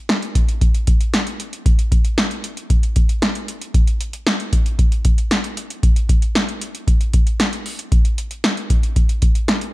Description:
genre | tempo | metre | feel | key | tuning
pop | 115 BPM | 4/4 | straight | none | none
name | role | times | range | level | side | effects
electro analog drum machine | drums | 0.1-9.7 s | hi-hat, kick drum, snare drum | -16 LUFS | equal | none
room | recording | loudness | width
little or no reverb | none | -16 LUFS | side -19 dB against mid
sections
0.0-9.7 A section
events
none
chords
none

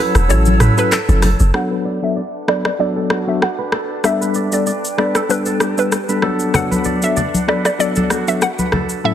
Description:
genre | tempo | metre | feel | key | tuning
afrobeats | 96 BPM | 4/4 | swing 55% on 16ths | B minor | A4 = 440 Hz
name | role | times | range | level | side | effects
hollow square pluck | melody | 0.0-9.1 s | A4 to F#5 | -22 LUFS | right 1 dB | chorus, low-pass filter, digital delay
bright tine electric piano | accompaniment | 0.0-9.1 s | A2 to A4 | -20 LUFS | left 3 dB | medium stereo tremolo, low-pass filter
flute section | sustained chords | 0.0-9.1 s | D4 to E6 | -27 LUFS | equal | low-pass filter
kora | riff | 0.0-9.1 s | F#4 to D5 | -26 LUFS | right 7 dB | low-pass filter, digital delay
deep log drum bass | bass | 0.1-1.5 s | E1 to A1 | -13 LUFS | equal | none
afro-pop drum kit | drums | 0.1-9.0 s | handclaps, hi-hat, rim click, shaker, toms | -20 LUFS | equal | soft clipping on snare
congas | percussion | 0.5-1.4, 6.5-8.9 s | none | -21 LUFS | left 2 dB | none
room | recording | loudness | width
light reverb | dense, heavily limited modern master | -14 LUFS | side -10 dB against mid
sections
0.0-1.5 A section; 1.5-9.1 B section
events
break 0.0-1.5; filter sweep 1.5-9.1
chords
0.0 F#m7; 1.5 Bm7; 4.0 Gadd9; 6.2 Bm7

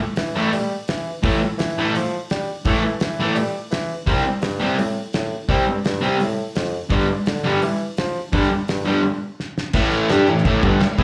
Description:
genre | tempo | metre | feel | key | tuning
garage rock duo or trio | 169 BPM | 4/4 | straight | A minor | A4 = 442 Hz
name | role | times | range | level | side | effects
clear bassoon | bass | 0.2-11.0 s | C2 to G3 | -28 LUFS | equal | none
cloth-damped thuddy drum kit | drums | 0.2-11.0 s | crash cymbal, hi-hat, kick drum, snare drum | -27 LUFS | equal | none
fuzz guitar | riff | 0.4-11.0 s | G2 to G4 | -22 LUFS | equal | distortion, slapback echo
room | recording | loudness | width
light reverb, studio ambience | live gig heard through the venue's PA, club reverb | -21 LUFS | mono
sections
0.0-9.7 A section; 9.7-11.0 B section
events
break 9.0-9.7; drum fill 9.4-9.7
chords
0.0 A5; 4.1 C5; 6.9 G5; 9.7 A5

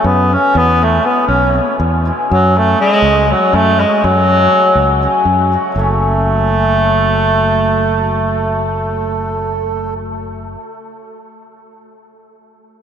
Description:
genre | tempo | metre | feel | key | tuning
balkan folk, Balkan wedding band | 243 BPM (eighths) | 7/8 | straight | F# minor | A4 = 441 Hz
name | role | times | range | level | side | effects
warm clarinet | melody | 0.0-9.9 s | F#3 to C#4 | -14 LUFS | right 1 dB | none
mellow accordion | second line | 0.0-9.9 s | F#4 to C#5 | -20 LUFS | right 1 dB | none
hammered dulcimer | accompaniment | 0.0-10.9 s | B2 to F#4 | -19 LUFS | left 3 dB | none
fingered electric bass | bass | 0.0-10.5 s | F#1 to F#2 | -17 LUFS | equal | none
room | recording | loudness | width
wet huge ambient reverb, RT60 7.1 s | in a vast, echoing space | -11 LUFS | side -8 dB against mid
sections
0.0-5.8 A section; 5.8-9.2 B section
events
none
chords
0.0 F#m; 0.6 E; 2.3 F#m

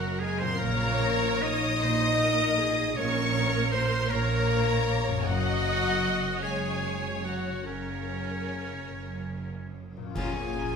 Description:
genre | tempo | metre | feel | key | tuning
cinematic, emotional film score for orchestra | 47-53 BPM (dotted quarters) | 6/8 | rubato | Bb minor | A4 = 440 Hz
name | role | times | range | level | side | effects
rich symphonic violin section | melody | 0.0-10.8 s | Db5 to Eb6 | -33 LUFS | left 2 dB | none
clear oboe | second line | 0.0-9.7 s | Db4 to Eb5 | -34 LUFS | right 1 dB | none
mellow clarinet | second line | 0.0-10.8 s | Db4 to Eb5 | -35 LUFS | left 3 dB | none
warm symphonic violin section | second line | 0.0-10.8 s | Db4 to Db6 | -37 LUFS | left 3 dB | none
rich symphonic viola section | accompaniment | 0.0-10.8 s | Bb3 to Eb5 | -34 LUFS | right 1 dB | none
mellow French horn section | sustained chords | 0.0-10.8 s | Db3 to C5 | -34 LUFS | left 5 dB | none
rich symphonic cello section | bass | 0.0-10.8 s | Gb2 to Bb2 | -34 LUFS | right 4 dB | none
warm symphonic double bass section | bass | 0.0-10.8 s | Gb1 to Bb1 | -34 LUFS | right 4 dB | none
concert harp | arpeggios | 0.4-10.8 s | Gb2 to Gb4 | -37 LUFS | left 7 dB | none
cymbal swell, clash cymbals and concert bass drum | percussion | 7.7-10.8 s | none | -38 LUFS | equal | none
silver concert flute | second line | 10.2-10.8 s | Ab5 | -36 LUFS | left 3 dB | none
timpani | percussion | 10.2-10.8 s | Bb2 | -38 LUFS | right 1 dB | none
room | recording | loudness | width
wet scoring stage reverb, RT60 1.8 s | none | -25 LUFS | side -6 dB against mid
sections
0.0-10.2 A section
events
band accent 10.2-10.8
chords
0.0 Gb; 0.6 Bbm; 5.3 Gb; 10.2 Bbm

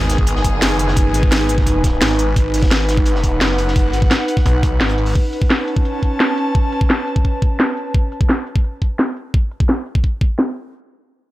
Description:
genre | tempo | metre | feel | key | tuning
dark technical drum and bass | 172 BPM | 4/4 | straight | unclear | A4 = 439 Hz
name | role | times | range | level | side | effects
rich studio string section | sustained chords | 0.0-2.3 s | D#3 to G#4 | -24 LUFS | left 1 dB | sidechain pumping
snarling distorted saw bass | bass | 0.0-5.1 s | F#1 to B1 | -18 LUFS | equal | distortion, tube saturation, sidechain pumping
sub drop | sound effects | 0.0-1.0 s | none | -28 LUFS | equal | none
airy breathy pad | texture | 0.0-7.9 s | C#4 to A5 | -21 LUFS | equal | chorus, sidechain pumping
crunchy breakbeat drum kit | drums | 0.1-5.1 s | hi-hat, snare drum | -32 LUFS | equal | high-pass filter on hats, high-pass filter on snare, high-pass filter on room
drum and bass drum kit | drums | 0.1-10.6 s | hi-hat, snare drum | -18 LUFS | equal | low-pass filter on hats, low-pass filter on perc, low-pass filter on snare, low-pass filter on toms, low-pass filter on room
electronic kick drum | drums | 0.2-10.3 s | none | -16 LUFS | equal | none
room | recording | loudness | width
light reverb, digital ambience | dark, warm production | -14 LUFS | side -16 dB against mid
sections
0.0-10.7 A section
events
impact 0.0-1.0; filter sweep on drum 0.0-10.7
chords
0.0 G#m; 5.2 Aadd9; 10.7 N.C.

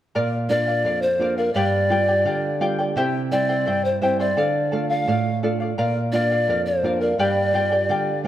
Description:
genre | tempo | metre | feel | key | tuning
andean folk | 85 BPM | 2/4 | straight | unclear | A4 = 441 Hz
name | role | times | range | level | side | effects
charango | accompaniment | 0.2-8.3 s | E4 to G5 | -24 LUFS | left 2 dB | none
nylon-string guitar | accompaniment | 0.2-8.3 s | F2 to F4 | -24 LUFS | right 3 dB | none
breathy polished pan flute | melody | 0.5-8.2 s | Bb4 to F5 | -22 LUFS | left 1 dB | none
room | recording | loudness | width
moderate scoring stage reverb, RT60 1.9 s | none | -19 LUFS | side -12 dB against mid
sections
0.1-8.3 A section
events
none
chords
0.1 Bb; 1.6 G7; 3.0 C; 4.4 Dm; 5.8 Bb; 7.2 G7

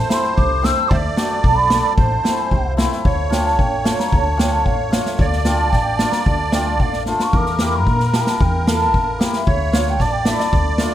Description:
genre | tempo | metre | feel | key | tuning
klezmer | 112 BPM | 2/4 | straight | A minor, D harmonic minor from 3.1 s | A4 = 445 Hz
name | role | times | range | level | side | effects
mellow hollow bansuri | melody | 0.0-10.9 s | D5 to E6 | -21 LUFS | right 1 dB | none
musette accordion | second line | 0.0-10.9 s | Bb4 to D5 | -25 LUFS | right 6 dB | none
hammered dulcimer | accompaniment | 0.1-10.9 s | A3 to A4 | -24 LUFS | left 3 dB | none
street-band drum kit | drums | 0.1-10.9 s | kick drum, snare drum | -19 LUFS | equal | none
upright bass | bass | 0.4-10.9 s | A1 to Bb2 | -21 LUFS | equal | none
room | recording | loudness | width
light reverb | close, detailed microphones | -15 LUFS | side -12 dB against mid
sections
0.0-3.1 A section; 3.1-10.9 B section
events
drum fill 7.1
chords
0.0 Am; 0.9 D; 2.0 Am; 3.1 Dm; 7.3 Edim; 9.5 Dm

